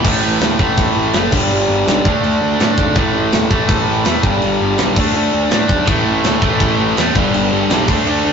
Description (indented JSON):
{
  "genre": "punk rock",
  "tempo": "164 BPM",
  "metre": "4/4",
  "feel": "straight",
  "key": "unclear",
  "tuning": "A4 = 440 Hz",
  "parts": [
    { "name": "distorted electric guitar", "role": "riff", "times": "0.0-8.3 s", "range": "G2 to D4", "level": "-15 LUFS", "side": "equal", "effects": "overdrive" },
    { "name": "scooped high-gain guitar", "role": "riff", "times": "0.0, 5.9-8.3 s", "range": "G2 to D4", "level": "-21 LUFS", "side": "right 2 dB", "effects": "distortion" },
    { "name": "fuzz picked electric bass", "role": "bass", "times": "0.0-8.3 s", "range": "F#1 to A2", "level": "-20 LUFS", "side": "equal", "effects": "overdrive" },
    { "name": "tight metal drum kit", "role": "drums", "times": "0.0-8.2 s", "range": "crash cymbal, kick drum, snare drum", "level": "-18 LUFS", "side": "equal", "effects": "none" }
  ],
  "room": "moderate booth ambience, RT60 0.2 s",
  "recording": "rough rehearsal-room recording, tube saturation, nothing above 7.7 kHz",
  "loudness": "-12 LUFS",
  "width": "side -6 dB against mid",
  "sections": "0.1-8.3 A section",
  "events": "none",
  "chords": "0.1 A5; 1.3 G; 2.1 D5; 3.0 A5; 4.2 G; 5.0 D5; 5.9 A5; 7.2 G",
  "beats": "| 0.05 0.41 0.78 1.15 | 1.51 1.88 2.24 2.60 | 2.97 3.33 3.70 4.06 | 4.43 4.79 5.16 5.52 | 5.88 6.25 6.61 6.98 | 7.34 7.71 8.07"
}